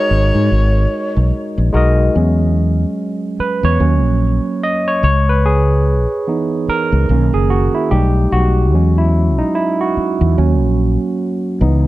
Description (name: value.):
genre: R&B, neo-soul.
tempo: 73 BPM.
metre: 4/4.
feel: swing 59% on 16ths.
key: unclear.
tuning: A4 = 440 Hz.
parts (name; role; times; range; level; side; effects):
breathy alto saxophone; melody; 0.0-1.3 s; C#5; -20 LUFS; left 2 dB; analog delay.
barky tine electric piano; accompaniment; 0.0-11.9 s; D#3 to D#5; -16 LUFS; moving between left 2 dB and right 5 dB; overdrive, auto-pan.
fretless electric bass; bass; 0.1-11.9 s; F#1 to G#2; -13 LUFS; equal; analog chorus.
room: light reverb, studio reverb.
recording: dark, warm production.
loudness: -13 LUFS.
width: side -16 dB against mid.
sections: 0.0-2.1 A section; 2.1-11.9 B section.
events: tine electric piano solo 2.1-11.9.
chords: 0.0 G#7sus4; 2.1 E69; 3.8 D#m7; 5.0 C#m7; 7.1 Bmaj9; 7.9 B7b13; 8.7 E69; 10.4 D#m7.